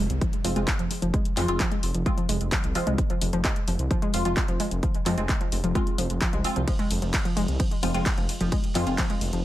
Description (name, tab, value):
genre	driving peak-time techno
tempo	130 BPM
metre	4/4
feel	straight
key	F minor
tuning	A4 = 440 Hz
part	warbly dusty pluck	riff	0.0-9.4 s	F3 to Ab3	-30 LUFS	equal	chorus, tube saturation, cassette tape, sidechain pumping, digital delay
part	dark detuned saw bass	bass	0.0-9.4 s	F1 to F2	-28 LUFS	equal	sidechain pumping
part	impact	sound effects	0.0-1.1 s	none	-42 LUFS	equal	none
part	punchy analog drum machine	drums	0.1-9.4 s	handclaps, hi-hat, ride cymbal	-31 LUFS	equal	sidechain pumping on hats, sidechain pumping on cymbals
part	electronic kick drum	drums	0.2-9.1 s	none	-26 LUFS	equal	none
part	filtered dub chord stab	stabs	0.4-9.0 s	Ab3 to F4	-30 LUFS	equal	phaser, lush chorus, sidechain pumping, digital delay
room	little or no reverb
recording	none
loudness	-23 LUFS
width	side -14 dB against mid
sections	0.0-9.4 A section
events	impact 0.0-1.1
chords	0.0 Fm